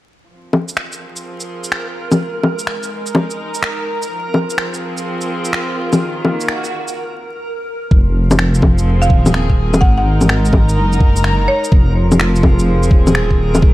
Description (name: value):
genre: future garage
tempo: 126 BPM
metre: 4/4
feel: swing 66% on 16ths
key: unclear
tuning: A4 = 440 Hz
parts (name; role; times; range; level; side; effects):
- warm studio string section; sustained chords; 0.3-13.7 s; Eb3 to Bb5; -22 LUFS; equal; sidechain pumping
- backwards swelling texture; texture; 1.0-13.7 s; Bb4; -27 LUFS; right 2 dB; built-in reverb
- electronic bongos, shaker and finger snaps; drums; 0.5-13.6 s; none; -17 LUFS; left 1 dB; none
- dark detuned saw bass; bass; 7.9-13.7 s; Eb1 to Ab1; -14 LUFS; equal; sidechain pumping
- electronic kick drum; drums; 7.9-13.7 s; none; -11 LUFS; equal; none
- buzzing marimba with medium hard mallets; melody; 9.0-11.8 s; Db5 to Gb5; -22 LUFS; right 1 dB; tape echo
room: light reverb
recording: vinyl crackle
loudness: -12 LUFS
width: side -16 dB against mid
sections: 0.3-7.9 A section; 7.9-13.7 B section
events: fade-in on string section 0.3-7.9; break 7.0-7.9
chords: 0.3 Fm; 2.2 Absus2; 4.1 Fm7; 6.0 Ebmadd9; 7.9 Fm7; 9.8 Absus2; 11.7 Fm7